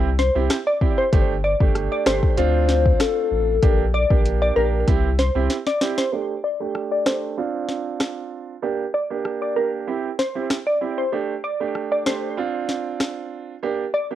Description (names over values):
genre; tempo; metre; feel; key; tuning
dancehall; 96 BPM; 4/4; straight; unclear; A4 = 443 Hz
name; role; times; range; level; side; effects
warm grand piano; accompaniment; 0.0-14.2 s; A3 to G4; -25 LUFS; right 8 dB; low-pass filter, cassette tape
saturated sub bass; bass; 0.0-5.5 s; G1 to D2; -22 LUFS; left 1 dB; none
glassy wavetable pluck; melody; 0.2-14.1 s; Bb4 to D5; -23 LUFS; left 1 dB; chorus, low-pass filter, cassette tape, tape echo
afro-pop drum kit; drums; 0.2-13.2 s; hi-hat, kick drum, rim click, snare drum; -20 LUFS; left 1 dB; cassette tape
hollow clarinet-like synth lead; second line; 2.4-3.8 s; A4 to C5; -22 LUFS; left 9 dB; chorus, cassette tape, tape echo
room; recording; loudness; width
light reverb; home recording on cassette; -19 LUFS; side -12 dB against mid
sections
0.0-6.1 A section; 6.1-14.2 B section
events
drum fill 5.5-6.1; filter sweep 6.1-14.2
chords
0.0 C; 1.1 Gsus2; 2.4 Dm7; 3.6 Bb6; 4.9 C; 6.1 Gsus2; 7.4 Dm7; 8.6 Bb6; 9.9 C; 11.1 Gsus2; 12.4 Dm7; 13.6 Bb6